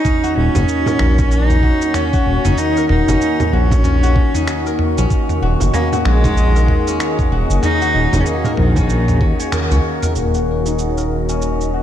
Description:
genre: organic downtempo.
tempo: 95 BPM.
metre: 4/4.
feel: swing 60% on 16ths.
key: Eb minor pentatonic.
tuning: A4 = 442 Hz.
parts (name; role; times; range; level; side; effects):
clear cello; melody; 0.0-9.5 s; Eb3 to Eb4; -20 LUFS; right 1 dB; digital delay.
warm analog pad; sustained chords; 0.0-11.8 s; Eb3 to Eb5; -24 LUFS; left 1 dB; chorus, sidechain pumping.
steel-string zither; arpeggios; 0.0-11.8 s; Db4 to Db5; -22 LUFS; left 3 dB; vintage 12-bit sampler grit, low-pass filter, ping-pong delay.
dusty soul sampler-style drum kit; drums; 0.0-11.7 s; cabasa, finger snaps, toms; -22 LUFS; right 1 dB; none.
wind-like tuned noise texture; texture; 0.8-11.8 s; Eb4 to Gb5; -29 LUFS; left 1 dB; built-in reverb.
electronic kick drum; drums; 0.1-9.4 s; none; -18 LUFS; equal; none.
smooth synth bass; bass; 0.4-11.8 s; Eb1 to Eb2; -16 LUFS; equal; sidechain pumping.
frame drum; percussion; 0.5-8.9 s; none; -24 LUFS; right 3 dB; none.
room: light reverb, digital ambience.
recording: dark, warm production.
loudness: -13 LUFS.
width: side -11 dB against mid.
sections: 0.0-10.2 A section; 10.2-11.8 B section.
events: band accent 9.5-9.8.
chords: 0.0 Ebm7.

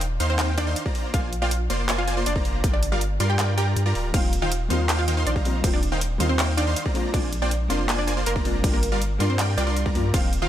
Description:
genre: future bass.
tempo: 160 BPM.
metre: 4/4.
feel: half-time.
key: Eb major.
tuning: A4 = 444 Hz.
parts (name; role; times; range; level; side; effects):
saturated sub bass; bass; 0.0-10.5 s; D1 to G2; -25 LUFS; equal; sidechain pumping.
big-room dance drum kit; drums; 0.0-10.4 s; crash cymbal, handclaps, hi-hat; -30 LUFS; equal; studio ambience.
supersaw stab; riff; 0.2-10.5 s; Eb3 to C6; -28 LUFS; equal; sidechain pumping.
wide unison pluck; melody; 0.3-10.5 s; Bb3 to G5; -30 LUFS; right 1 dB; sidechain pumping, digital delay.
electronic kick drum; drums; 0.9-10.2 s; none; -24 LUFS; equal; studio ambience.
soft round pluck; accompaniment; 4.1-10.5 s; G3 to F4; -31 LUFS; left 2 dB; ensemble chorus, cassette tape, sidechain pumping.
room: little or no reverb.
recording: none.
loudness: -21 LUFS.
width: side -11 dB against mid.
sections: 0.0-10.5 A section.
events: none.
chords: 0.0 Eb69; 1.0 Bb7; 2.6 Gm7; 4.1 Eb69; 7.0 Bb7; 8.6 Gm7.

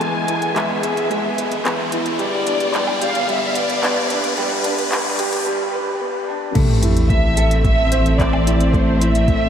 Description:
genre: piano and strings electronica.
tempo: 110 BPM.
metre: 4/4.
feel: straight.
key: A minor.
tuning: A4 = 442 Hz.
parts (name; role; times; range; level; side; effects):
dark studio violin section; melody; 0.0-9.5 s; B4 to G#5; -22 LUFS; equal; tape echo.
dark chamber string section; sustained chords; 0.0-9.5 s; D3 to C4; -26 LUFS; equal; sidechain pumping.
warm upright piano; riff; 0.0-9.5 s; G3 to C5; -22 LUFS; equal; wide subtle chorus, tape echo.
warm sub bass; bass; 0.0-9.5 s; A1; -18 LUFS; equal; sidechain pumping, high-pass filter.
organic electronic drum kit; drums; 0.0-9.4 s; crash cymbal, handclaps, hi-hat, woodblock; -26 LUFS; equal; overdrive.
riser and sub drop; sound effects; 0.0-8.7 s; none; -25 LUFS; equal; none.
electronic kick drum; drums; 6.6-9.4 s; none; -19 LUFS; equal; overdrive.
room: wet huge ambient reverb, RT60 7.9 s.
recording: dreamy mix soaked in reverb, high-pass filter.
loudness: -16 LUFS.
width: side -8 dB against mid.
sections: 0.0-6.6 A section; 6.6-9.5 B section.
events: build-up 0.0-6.6; riser 0.0-5.5; break 5.5-6.6; drop 6.6-9.5; impact 6.6-8.7.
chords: 0.0 E; 2.2 G; 6.6 Am.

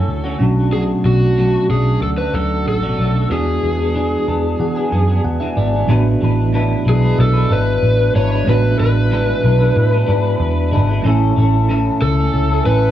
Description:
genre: indie pop.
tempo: 93 BPM.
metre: 4/4.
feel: straight.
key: unclear.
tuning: A4 = 441 Hz.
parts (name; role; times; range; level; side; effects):
overdriven slide guitar; melody; 0.0-12.9 s; F#4 to C#5; -20 LUFS; left 1 dB; wide subtle chorus, analog delay.
bell-like tine electric piano; accompaniment; 0.0-12.9 s; E3 to A5; -22 LUFS; right 5 dB; medium stereo tremolo, cassette tape.
clean electric guitar; accompaniment; 0.0-12.9 s; A2 to B4; -21 LUFS; left 2 dB; analog chorus, warbly pitch drift.
vintage muted picked electric bass; bass; 0.1-12.9 s; G#1 to E3; -16 LUFS; equal; tube saturation.
room: light reverb.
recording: worn, warbling old tape, cassette tape, warbly pitch drift, small room ambience.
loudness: -13 LUFS.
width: side -11 dB against mid.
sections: 0.0-5.9 A section; 5.9-12.9 B section.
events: tine electric piano fill 4.0-5.9.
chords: 0.4 Bm7; 3.3 E7; 11.1 A.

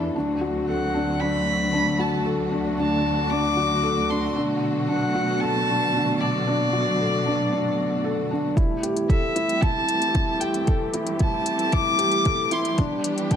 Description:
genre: piano and strings electronica.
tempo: 114 BPM.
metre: 4/4.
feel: straight.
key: unclear.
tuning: A4 = 440 Hz.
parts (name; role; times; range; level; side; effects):
rich symphonic string section; sustained chords; 0.0-13.4 s; D3 to A4; -28 LUFS; right 2 dB; sidechain pumping, low-pass filter.
felt-muted upright piano; riff; 0.0-13.4 s; D4 to A4; -25 LUFS; left 1 dB; digital delay.
rich symphonic cello section; bass; 0.0-8.5 s; D2 to B2; -30 LUFS; equal; tube saturation, sidechain pumping.
warm violin; melody; 0.7-13.4 s; D5 to D6; -25 LUFS; left 1 dB; low-pass filter, digital delay.
electronic hi-hat; drums; 8.6-13.4 s; none; -32 LUFS; left 5 dB; none.
electronic kick drum; drums; 8.6-13.4 s; none; -22 LUFS; equal; overdrive.
room: moderate scoring stage reverb, RT60 1.6 s, small room ambience.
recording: dark, warm production, high-pass filter.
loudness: -20 LUFS.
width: side -8 dB against mid.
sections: 0.0-8.6 A section; 8.6-13.4 B section.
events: build-up 8.6-13.4; filter sweep on string section 8.6-13.4; filter sweep 8.6-13.4.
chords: 0.2 D7; 4.4 Bm7; 8.6 Am7; 12.8 Em7.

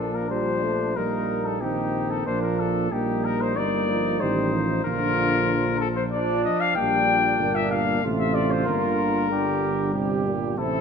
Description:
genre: classical, brass quintet.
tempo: 94 BPM.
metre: 3/4.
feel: rubato.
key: Bb major.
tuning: A4 = 440 Hz.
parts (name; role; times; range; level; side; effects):
warm trumpet; melody; 0.0-10.8 s; G4 to G5; -26 LUFS; left 6 dB; none.
mellow trumpet; second line; 0.0-10.8 s; D4 to G4; -30 LUFS; right 8 dB; none.
mellow euphonium; accompaniment; 0.0-10.8 s; Bb2 to G3; -29 LUFS; right 2 dB; none.
warm French horn; accompaniment; 0.0-10.8 s; F3 to C4; -29 LUFS; left 3 dB; none.
mellow tuba; bass; 0.0-10.8 s; G1 to Bb1; -28 LUFS; right 3 dB; none.
room: moderate scoring stage reverb, RT60 1.6 s.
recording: none.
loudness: -21 LUFS.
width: side -6 dB against mid.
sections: 0.0-10.8 A section.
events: none.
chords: 0.0 Bb; 1.0 Eb/Bb; 2.3 Bb; 2.9 Eb/Bb; 4.2 F7/A; 4.9 Bb; 6.8 Gm/Bb; 8.0 F/A; 8.7 Gm.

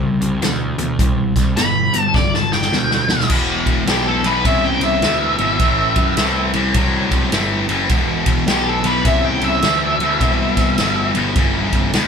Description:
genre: blues rock power trio and southern rock.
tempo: 104 BPM.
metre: 4/4.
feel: swing 63% on 8ths.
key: E minor.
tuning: A4 = 439 Hz.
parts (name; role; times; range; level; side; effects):
sludgy distorted guitar; riff; 0.0-12.1 s; E2 to F#3; -19 LUFS; left 1 dB; overdrive.
fuzz picked electric bass; bass; 0.0-12.1 s; E1 to F#2; -22 LUFS; equal; overdrive.
vintage drum kit; drums; 0.2-12.1 s; crash cymbal, hi-hat, kick drum, ride cymbal, snare drum; -19 LUFS; equal; none.
octave-fuzz lead guitar; melody; 1.6-11.1 s; G4 to B5; -19 LUFS; equal; distortion.
room: moderate studio ambience, RT60 0.5 s.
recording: band playing live in one room.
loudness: -14 LUFS.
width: side -6 dB against mid.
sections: 0.0-3.3 A section; 3.3-12.1 A section.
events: drum fill 2.1-3.3.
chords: 0.0 Em7; 3.3 E5; 5.6 Am7; 7.9 Em7.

